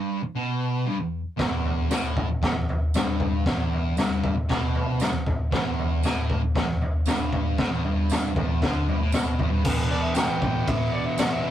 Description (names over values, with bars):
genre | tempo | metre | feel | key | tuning
garage rock duo or trio | 116 BPM | 4/4 | straight | E minor | A4 = 440 Hz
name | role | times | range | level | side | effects
fuzz guitar | riff | 0.0-11.5 s | E2 to E3 | -27 LUFS | equal | distortion
raw garage drum kit | drums | 1.4-11.3 s | crash cymbal, kick drum, snare drum, toms | -23 LUFS | equal | none
tambourine | percussion | 1.9-11.3 s | none | -39 LUFS | right 6 dB | none
overdriven harmonica | melody | 9.9-11.5 s | D5 to G5 | -29 LUFS | left 1 dB | none
room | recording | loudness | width
light reverb | rough rehearsal-room recording | -22 LUFS | side -11 dB against mid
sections
0.0-9.6 A section; 9.6-11.5 B section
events
none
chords
0.0 Em